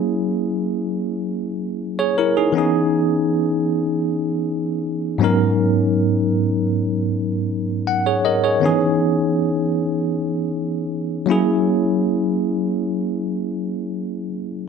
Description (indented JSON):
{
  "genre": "R&B",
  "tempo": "free time",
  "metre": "none",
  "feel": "none",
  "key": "C# dorian",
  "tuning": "A4 = 440 Hz",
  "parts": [
    { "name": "bell-like tine electric piano", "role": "solo", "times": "0.0-14.7 s", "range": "G#2 to F#5", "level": "-18 LUFS", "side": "equal", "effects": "medium stereo tremolo" }
  ],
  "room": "wet recital hall reverb, RT60 1.4 s",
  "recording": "none",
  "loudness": "-18 LUFS",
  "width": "side -6 dB against mid",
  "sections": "0.0-14.7 A section",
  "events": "tine electric piano fill 7.5-8.6",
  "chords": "0.0 F#9; 2.6 C#m9/E; 5.2 G#m11; 8.6 C#m9; 11.3 F#9",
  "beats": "free time"
}